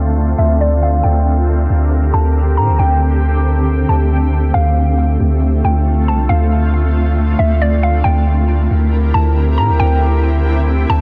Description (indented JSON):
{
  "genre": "hip hop",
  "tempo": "137 BPM",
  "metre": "4/4",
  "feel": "half-time",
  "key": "D minor",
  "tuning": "A4 = 441 Hz",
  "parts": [
    { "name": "hollow square pluck", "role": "melody", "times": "0.0-11.0 s", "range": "D5 to Bb5", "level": "-23 LUFS", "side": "equal", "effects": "chorus, low-pass filter, digital delay" },
    { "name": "shimmering ambient pad", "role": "sustained chords", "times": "0.0-11.0 s", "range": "D3 to Bb4", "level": "-21 LUFS", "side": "equal", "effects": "chorus, built-in reverb, low-pass filter" },
    { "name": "long sustained 808-style bass", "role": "bass", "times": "0.0-11.0 s", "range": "C2 to A2", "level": "-15 LUFS", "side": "equal", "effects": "none" }
  ],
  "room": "digital ambience",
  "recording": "dense, heavily limited modern master",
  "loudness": "-14 LUFS",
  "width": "mono",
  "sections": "0.0-11.0 A section",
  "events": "filter sweep 0.0-11.0",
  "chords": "0.0 Dm7; 1.0 C5/D; 2.8 Am7/D; 4.5 Dm7; 8.0 C7/D; 9.8 Am7/D"
}